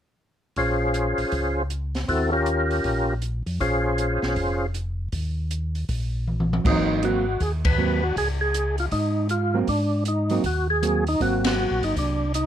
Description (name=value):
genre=soul jazz organ trio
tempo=158 BPM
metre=4/4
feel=swing 63% on 8ths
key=Ab mixolydian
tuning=A4 = 441 Hz
part: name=percussive tonewheel organ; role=melody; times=0.6-12.5 s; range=C4 to C5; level=-24 LUFS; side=equal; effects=slow rotary speaker, overdrive, chorus vibrato
part: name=mellow tonewheel organ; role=bass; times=0.6-12.5 s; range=F1 to Ab2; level=-26 LUFS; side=equal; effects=slow rotary speaker
part: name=open jazz drum kit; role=drums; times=0.6-12.4 s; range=crash cymbal, hi-hat, kick drum, ride cymbal, snare drum, toms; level=-28 LUFS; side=equal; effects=none
part: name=hollow-body jazz guitar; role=accompaniment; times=6.6-12.3 s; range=Gb3 to C4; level=-26 LUFS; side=right 5 dB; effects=none
room=light reverb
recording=close, detailed microphones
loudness=-21 LUFS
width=side -10 dB against mid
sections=0.6-6.6 A section; 6.6-12.5 B section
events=drum fill 6.3-6.6; band accent 7.6, 11.4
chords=0.6 Bbm7; 2.1 Eb7; 3.6 Bbm7; 5.1 Eb5; 6.6 Ab9; 8.2 Dbsus2; 9.7 Ab9